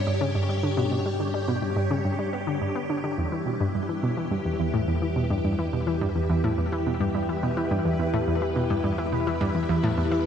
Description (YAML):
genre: ambient, sequencer-driven space music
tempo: 106 BPM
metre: 4/4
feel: straight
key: unclear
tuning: A4 = 440 Hz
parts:
  - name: string machine, full ensemble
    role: sustained chords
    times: 0.0-10.3 s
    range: D4 to C#5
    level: -28 LUFS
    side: equal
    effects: phaser, ensemble chorus
  - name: analog drone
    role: bass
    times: 0.0-10.3 s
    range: E2 to G2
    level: -32 LUFS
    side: equal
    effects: chorus
  - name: analog pluck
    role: riff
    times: 0.1-10.2 s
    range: E2 to B3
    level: -26 LUFS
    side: equal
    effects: chorus, ping-pong delay
room: moderate plate reverb, RT60 3.0 s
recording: dark, warm production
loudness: -23 LUFS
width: side -8 dB against mid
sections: 0.0-10.3 A section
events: none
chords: 0.0 G; 3.2 Em